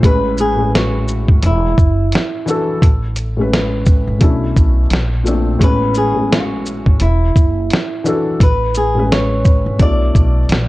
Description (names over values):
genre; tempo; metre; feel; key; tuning
lo-fi hip hop; 86 BPM; 4/4; swing 59% on 16ths; A major; A4 = 440 Hz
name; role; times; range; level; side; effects
felt-muted upright piano; accompaniment; 0.0-10.5 s; A2 to D5; -19 LUFS; left 2 dB; cassette tape
upright bass; bass; 0.0-10.7 s; E1 to B1; -17 LUFS; equal; none
lo-fi sampler-style drum kit; drums; 0.0-10.7 s; hi-hat, kick drum, shaker, snare drum; -13 LUFS; equal; none
flamenco guitar; melody; 0.1-10.7 s; E4 to D5; -19 LUFS; equal; none
room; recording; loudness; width
light reverb, studio ambience; dark, warm production; -12 LUFS; side -18 dB against mid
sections
0.0-10.7 A section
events
none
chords
0.0 Amaj9; 1.4 E9sus4; 2.8 Amaj9; 4.2 Bm11; 4.9 Bbmaj9; 5.6 Amaj9; 7.0 E9sus4; 8.4 Amaj9; 9.8 Bm7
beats
| 0.03 0.73 1.43 2.12 | 2.82 3.52 4.22 4.92 | 5.61 6.31 7.01 7.71 | 8.40 9.10 9.80 10.50